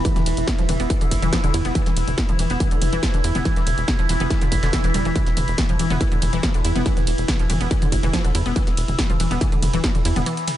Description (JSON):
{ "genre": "driving peak-time techno", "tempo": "141 BPM", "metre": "4/4", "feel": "straight", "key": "unclear", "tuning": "A4 = 440 Hz", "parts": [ { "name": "tight sequencer bass", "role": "bass", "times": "0.0-10.2 s", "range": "E1 to E2", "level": "-24 LUFS", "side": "equal", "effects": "sidechain pumping" }, { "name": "overtone-sweeping drone", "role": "drone", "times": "0.0-10.6 s", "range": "E3 to E4", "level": "-27 LUFS", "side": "right 1 dB", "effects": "chorus, built-in reverb, phaser, sidechain pumping" }, { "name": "electronic kick drum", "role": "drums", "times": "0.0-9.9 s", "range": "none", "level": "-21 LUFS", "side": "equal", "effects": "distortion" }, { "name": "punchy analog drum machine", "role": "drums", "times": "0.0-10.6 s", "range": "hi-hat, ride cymbal, snare drum, toms", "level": "-27 LUFS", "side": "left 1 dB", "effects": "sidechain pumping on hats, sidechain pumping on toms, sidechain pumping on cymbals" }, { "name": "resonant blip pluck", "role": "riff", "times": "0.1-10.3 s", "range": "D3 to E4", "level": "-26 LUFS", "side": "left 1 dB", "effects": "chorus, sidechain pumping, ping-pong delay" }, { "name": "dusty soul sampler-style drum kit", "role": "drums", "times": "0.1-10.6 s", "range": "hi-hat, snare drum", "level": "-39 LUFS", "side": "equal", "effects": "none" } ], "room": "little or no reverb", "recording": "nothing above 10.4 kHz", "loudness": "-18 LUFS", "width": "side -13 dB against mid", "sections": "0.0-10.6 A section", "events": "break 10.3-10.6", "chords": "none" }